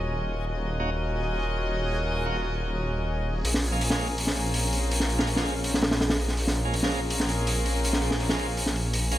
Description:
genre	drum and bass, jungle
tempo	164 BPM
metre	4/4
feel	straight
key	Eb dorian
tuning	A4 = 440 Hz
part	warm studio string section	sustained chords	0.0-9.2 s	C4 to Eb5	-31 LUFS	left 1 dB	none
part	detuned saw bass	bass	0.0-9.2 s	Eb1 to Bb1	-28 LUFS	equal	none
part	backwards swelling texture	texture	0.0-9.2 s	Ab4 to Ab5	-39 LUFS	right 1 dB	built-in reverb
part	bright tonewheel organ	stabs	0.8-9.2 s	F3 to Gb4	-36 LUFS	right 3 dB	overdrive, stopped rotary speaker, low-pass filter, dub echo
part	crunchy breakbeat drum kit	drums	3.4-9.2 s	hi-hat, snare drum	-26 LUFS	equal	none
room	light reverb, small room ambience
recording	none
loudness	-24 LUFS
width	side -13 dB against mid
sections	0.0-9.2 A section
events	none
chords	0.0 Ebm7; 3.4 Bbm7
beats	0.15 | 0.52 0.89 1.25 1.62 | 1.98 2.35 2.71 3.08 | 3.45 3.81 4.18 4.54 | 4.91 5.28 5.64 6.01 | 6.37 6.74 7.11 7.47 | 7.84 8.20 8.57 8.93

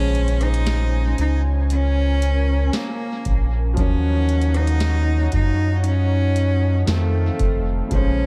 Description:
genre	contemporary R&B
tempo	58 BPM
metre	4/4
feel	straight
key	Bb minor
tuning	A4 = 440 Hz
part	rich cello	melody	0.0-8.3 s	A3 to Eb4	-28 LUFS	equal	tape echo
part	warm concert grand piano	accompaniment	0.0-8.3 s	Db3 to C5	-32 LUFS	equal	tape echo
part	warm analog pad	sustained chords	0.0-8.3 s	Bb3 to Ab5	-34 LUFS	equal	chorus
part	round analog bass	bass	0.0-8.3 s	F1 to Gb2	-21 LUFS	equal	none
part	impact	sound effects	0.0-3.8 s	none	barely audible	none	none
part	booming analog drum machine	drums	0.1-8.2 s	hi-hat, kick drum, rim click, snare drum	-26 LUFS	equal	none
room	little or no reverb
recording	echo-heavy mix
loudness	-20 LUFS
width	mono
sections	0.0-8.3 A section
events	impact 0.0-3.8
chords	0.0 Bbm9; 3.8 Ebm7; 6.9 F7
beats	0.67 1.70 2.74 | 3.77 4.80 5.84 6.87 | 7.91

